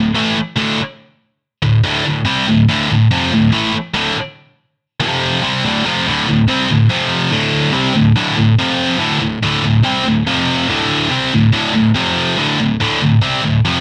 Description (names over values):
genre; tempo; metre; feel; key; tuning
metal; 142 BPM; 4/4; straight; D minor; A4 = 441 Hz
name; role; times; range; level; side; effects
high-gain distorted guitar; solo; 0.0-13.8 s; D2 to C4; -14 LUFS; equal; distortion
room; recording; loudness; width
moderate studio reverb, RT60 0.8 s; dark, warm production; -15 LUFS; mono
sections
0.0-6.1 A section; 6.1-13.8 B section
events
none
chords
0.0 D5; 5.0 F5; 5.4 Dm; 6.1 D5; 6.9 F5; 7.3 D5; 8.6 F5; 9.0 D5; 10.3 F5; 10.7 D5; 12.0 F5; 12.4 D5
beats
0.16 0.58 | 1.00 1.43 1.85 2.27 | 2.69 3.11 3.53 3.95 | 4.37 4.79 5.21 5.64 | 6.06 6.48 6.90 7.32 | 7.74 8.16 8.59 9.01 | 9.43 9.85 10.27 10.69 | 11.12 11.54 11.96 12.38 | 12.80 13.22 13.65